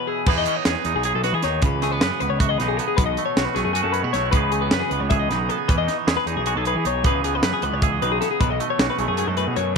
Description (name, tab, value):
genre	math rock and midwest emo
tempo	310 BPM (eighths)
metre	7/8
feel	straight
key	unclear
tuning	A4 = 440 Hz
part	twangy electric guitar	accompaniment	0.0-9.8 s	G#2 to B4	-25 LUFS	right 15 dB	none
part	twelve-string electric guitar	arpeggios	0.0-9.8 s	G#4 to E5	-24 LUFS	left 14 dB	none
part	fuzz picked electric bass	bass	0.3-9.7 s	B1 to E3	-26 LUFS	equal	overdrive
part	crisp fusion drum kit	drums	0.3-9.8 s	crash cymbal, hi-hat, kick drum, snare drum	-24 LUFS	right 1 dB	none
room	light reverb, studio reverb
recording	1960s-style stereo with parts hard left and right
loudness	-19 LUFS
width	side -5 dB against mid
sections	0.3-9.8 A section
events	break 0.0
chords	0.3 B7sus4